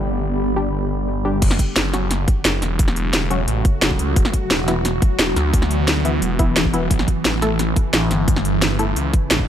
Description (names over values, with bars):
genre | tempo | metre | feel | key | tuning
dark technical drum and bass | 175 BPM | 4/4 | straight | F# phrygian | A4 = 440 Hz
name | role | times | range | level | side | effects
swarming drone | sustained chords | 0.0-9.5 s | C#3 to G4 | -24 LUFS | right 1 dB | built-in reverb, vintage 12-bit sampler grit, sidechain pumping
phased detuned saw bass | bass | 0.0-9.5 s | E1 to D2 | -21 LUFS | equal | phaser, sidechain pumping
granular cloud pad | texture | 0.0-1.4 s | B3 to B5 | -28 LUFS | right 1 dB | built-in reverb, sidechain pumping
filtered dub chord stab | stabs | 0.6-8.9 s | E3 to A4 | -26 LUFS | left 2 dB | chorus, ping-pong delay
drum and bass drum kit | drums | 1.4-9.4 s | crash cymbal, hi-hat, snare drum | -20 LUFS | equal | none
electronic kick drum | drums | 1.4-9.5 s | none | -18 LUFS | equal | none
room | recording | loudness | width
light reverb | none | -16 LUFS | side -10 dB against mid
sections
0.0-1.4 A section; 1.4-9.5 B section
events
drop 1.4-9.5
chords
0.0 G; 1.4 F#m; 4.2 Esus2; 6.9 A